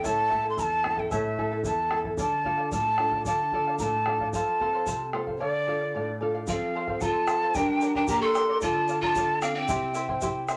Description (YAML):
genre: andean folk, Andean ensemble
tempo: 112 BPM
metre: 2/4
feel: straight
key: D minor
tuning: A4 = 438 Hz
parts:
  - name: breathy quena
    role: melody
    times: 0.0-10.5 s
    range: D5 to C#6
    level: -29 LUFS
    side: equal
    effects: none
  - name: charango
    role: accompaniment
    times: 0.0-10.6 s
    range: E4 to Bb5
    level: -34 LUFS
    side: equal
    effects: none
  - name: nylon-string guitar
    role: accompaniment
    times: 0.0-10.6 s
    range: E2 to A4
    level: -37 LUFS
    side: equal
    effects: none
  - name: bombo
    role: percussion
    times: 0.0-10.6 s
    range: none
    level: -38 LUFS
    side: equal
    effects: none
  - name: egg shaker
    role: percussion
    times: 0.0-10.6 s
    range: none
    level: -44 LUFS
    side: equal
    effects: none
  - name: breathy pan flute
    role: second line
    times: 6.5-10.4 s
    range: C4 to A4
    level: -31 LUFS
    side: equal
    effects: none
room: wet studio ambience, RT60 0.5 s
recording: none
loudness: -27 LUFS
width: mono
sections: 0.0-6.5 A section; 6.5-10.6 B section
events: none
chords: 0.0 A; 2.2 Dm; 4.3 F; 5.4 Dm; 6.5 F; 7.5 Gm; 8.6 Dm; 9.7 C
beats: | 0.05 0.58 | 1.11 1.65 | 2.19 2.72 | 3.26 3.79 | 4.33 4.86 | 5.40 5.94 | 6.47 7.01 | 7.54 8.08 | 8.61 9.15 | 9.68 10.22